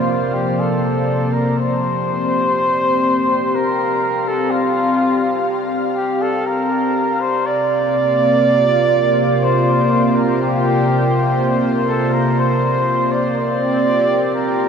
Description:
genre	ambient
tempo	61 BPM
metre	3/4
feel	straight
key	unclear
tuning	A4 = 440 Hz
part	mellow flugelhorn	melody	0.0-14.7 s	F4 to D5	-18 LUFS	right 1 dB	shimmer reverb, ping-pong delay
part	warm analog pad	sustained chords	0.0-14.7 s	C3 to F5	-17 LUFS	equal	chorus, shimmer reverb
room	wet cathedral reverb, RT60 6.1 s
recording	in a vast, echoing space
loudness	-14 LUFS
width	side -6 dB against mid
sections	0.0-1.6 A section; 1.6-14.7 B section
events	none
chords	0.0 Bbadd9/C; 1.6 C9sus4; 7.5 Bb69/C; 13.4 C9sus4

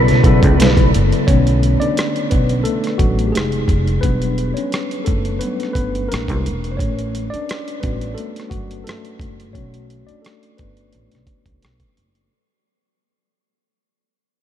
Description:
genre	R&B, neo-soul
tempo	87 BPM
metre	4/4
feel	swing 54% on 16ths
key	unclear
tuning	A4 = 443 Hz
part	electric guitar through a small old amp	melody	0.0-0.9 s	B4	-23 LUFS	left 1 dB	wide subtle chorus, ping-pong delay
part	mellow tine electric piano	accompaniment	0.0-12.3 s	C#3 to D5	-21 LUFS	left 2 dB	medium stereo tremolo
part	hollow soft pad	sustained chords	0.0-1.3 s	A3 to D5	-32 LUFS	right 2 dB	none
part	upright bass	bass	0.0-12.3 s	E1 to B2	-18 LUFS	right 1 dB	none
part	dusty soul sampler-style drum kit	drums	0.1-12.3 s	hi-hat, kick drum, rim click, snare drum	-20 LUFS	right 1 dB	overdrive
room	light reverb, digital ambience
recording	none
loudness	-15 LUFS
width	side -10 dB against mid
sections	0.0-1.3 A section; 1.3-12.3 B section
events	fade-out 1.3-12.3; tine electric piano solo 1.3-12.3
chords	0.0 Bm9; 3.3 Fm7; 4.0 Em7; 6.1 A#9; 6.8 A13

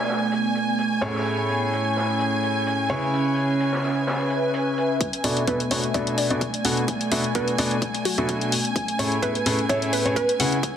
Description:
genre	piano house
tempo	128 BPM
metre	4/4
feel	swing 54% on 16ths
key	B dorian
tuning	A4 = 439 Hz
part	dark symphonic violin section	sustained chords	0.0-10.8 s	G#5	-29 LUFS	equal	sidechain pumping
part	clear baby grand piano	riff	0.0-10.6 s	A2 to F#5	-25 LUFS	equal	sidechain pumping, low-pass filter, digital delay
part	airy breathy pad	texture	0.0-10.8 s	A3 to G#5	-27 LUFS	equal	chorus, sidechain pumping
part	street-band drum kit	drums	0.1-4.9 s	hi-hat, snare drum	-32 LUFS	equal	high-pass filter on hats, low-pass filter on hats, high-pass filter on snare, low-pass filter on snare, high-pass filter on room, low-pass filter on room
part	electronic hi-hat	drums	5.0-10.7 s	none	-27 LUFS	left 3 dB	high-pass filter on hats, low-pass filter on hats
part	electronic kick drum	drums	5.0-10.7 s	none	-30 LUFS	equal	high-pass filter on kick
part	glassy wavetable pluck	melody	5.5-10.3 s	F#4 to D5	-27 LUFS	right 1 dB	chorus, digital delay
room	moderate plate reverb, RT60 1.5 s, small room ambience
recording	dense, heavily limited modern master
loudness	-21 LUFS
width	side -9 dB against mid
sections	0.0-5.0 A section; 5.0-10.8 B section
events	build-up 5.0-10.8; filter sweep on grand piano 5.0-10.8; filter sweep on synth pluck 5.0-10.8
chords	0.0 Bm7; 1.0 Amaj7; 2.9 C#m7; 5.0 Bm7; 8.5 Amaj7

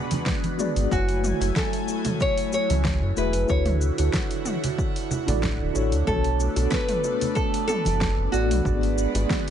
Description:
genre	sunset chillout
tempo	93 BPM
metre	4/4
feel	swing 53% on 16ths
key	F# minor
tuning	A4 = 440 Hz
part	mellow tine electric piano	accompaniment	0.0-9.5 s	A3 to G#5	-29 LUFS	moving between left 6 dB and right 8 dB	medium stereo tremolo, auto-pan, ping-pong delay
part	airy breathy pad	sustained chords	0.0-9.5 s	D3 to G#5	-31 LUFS	equal	chorus, phaser
part	deep house drum kit	drums	0.1-9.5 s	cabasa, hi-hat, snare drum, toms	-30 LUFS	right 1 dB	overdrive, small room ambience
part	congas and bongos	percussion	0.1-9.3 s	none	-32 LUFS	right 2 dB	none
part	electronic kick drum	drums	0.3-9.4 s	none	-28 LUFS	equal	overdrive, small room ambience
part	round analog bass	bass	0.8-9.3 s	D1 to F#2	-24 LUFS	equal	none
part	nylon-string guitar	melody	0.9-9.5 s	F#4 to C#5	-28 LUFS	equal	ping-pong delay
room	digital ambience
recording	nothing above 10.6 kHz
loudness	-21 LUFS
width	side -9 dB against mid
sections	0.0-9.5 A section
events	none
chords	0.0 G#m7b5; 0.9 F#m9; 3.5 Dmaj9; 6.1 Bm7; 8.7 G#m7b5

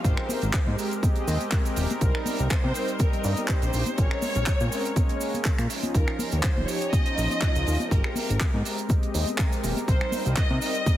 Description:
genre	nu-disco, nu disco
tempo	122 BPM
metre	4/4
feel	swing 54% on 16ths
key	unclear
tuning	A4 = 439 Hz
part	dark symphonic violin section	melody	0.0-11.0 s	Bb4 to Eb5	-32 LUFS	equal	digital delay
part	warm analog pad	accompaniment	0.0-11.0 s	F3 to Eb5	-30 LUFS	equal	chorus, sidechain pumping, digital delay
part	fat analog bass	bass	0.0-10.6 s	Eb1 to C3	-26 LUFS	equal	none
part	electronic kick drum	drums	0.0-11.0 s	none	-24 LUFS	equal	none
part	tight funk drum kit	drums	0.0-11.0 s	cabasa, finger snaps, handclaps, hi-hat	-32 LUFS	right 2 dB	none
part	congas	percussion	0.3-11.0 s	none	-35 LUFS	left 3 dB	none
room	light reverb, studio reverb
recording	heavily compressed radio sound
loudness	-22 LUFS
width	side -13 dB against mid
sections	0.0-11.0 A section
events	none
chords	0.0 Abmaj9; 2.0 Cm7; 3.7 Bbm9; 5.9 Eb9; 7.9 Abmaj9; 9.9 Cm7

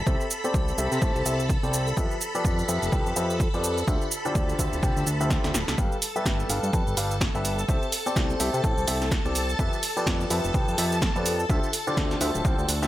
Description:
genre	piano house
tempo	126 BPM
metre	4/4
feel	swing 58% on 16ths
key	C major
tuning	A4 = 439 Hz
part	string machine, violins	sustained chords	0.0-12.9 s	A4 to B5	-32 LUFS	equal	ensemble chorus, sidechain pumping
part	fat analog bass	bass	0.0-12.9 s	D1 to C3	-29 LUFS	equal	sidechain pumping
part	bright baby grand piano	riff	0.1-12.9 s	D3 to A5	-29 LUFS	left 1 dB	sidechain pumping, low-pass filter, dub echo
part	electronic kick drum	drums	0.1-12.6 s	none	-26 LUFS	equal	overdrive
part	punchy analog drum machine	drums	0.1-12.9 s	hi-hat, shaker, snare drum	-30 LUFS	right 2 dB	overdrive
room	little or no reverb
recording	none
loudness	-23 LUFS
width	side -14 dB against mid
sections	0.0-12.9 A section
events	drum fill 5.3-5.8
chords	0.1 C6; 2.0 Fmaj9#11; 3.9 Dm11; 5.8 G9; 7.7 C6; 9.6 Fmaj9#11; 11.5 Dm11

